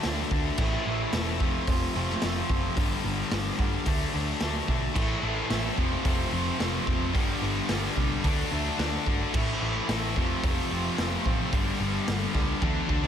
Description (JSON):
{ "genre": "quiet-loud alternative rock", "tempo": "110 BPM", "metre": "4/4", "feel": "straight", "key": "unclear", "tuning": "A4 = 440 Hz", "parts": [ { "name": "cranked stack guitar", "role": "riff", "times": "0.0-13.1 s", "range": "G2 to F4", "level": "-33 LUFS", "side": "right 10 dB", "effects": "overdrive, slapback echo" }, { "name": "thick fuzz guitar", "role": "riff", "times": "0.0-13.1 s", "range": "F2 to D4", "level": "-31 LUFS", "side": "left 10 dB", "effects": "distortion, slapback echo" }, { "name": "hollow-body short-scale picked electric bass", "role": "bass", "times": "0.0-13.1 s", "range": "E1 to G2", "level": "-32 LUFS", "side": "right 1 dB", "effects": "none" }, { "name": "raw garage drum kit", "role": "drums", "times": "0.0-13.1 s", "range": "crash cymbal, hi-hat, kick drum, snare drum, toms", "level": "-29 LUFS", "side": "equal", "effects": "none" }, { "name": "scooped high-gain guitar", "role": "riff", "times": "4.9-13.1 s", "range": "F2 to D4", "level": "-33 LUFS", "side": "right 1 dB", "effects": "distortion, slapback echo" } ], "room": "light reverb, small room reverb", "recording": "none", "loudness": "-25 LUFS", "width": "side -9 dB against mid", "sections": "0.0-13.1 A section", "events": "drum fill 12.6-13.1", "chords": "0.0 D; 0.6 Am; 1.4 F; 2.8 G; 3.9 D; 5.0 Am; 5.8 F; 7.1 G; 8.2 D; 9.3 Am; 10.2 F; 11.5 G" }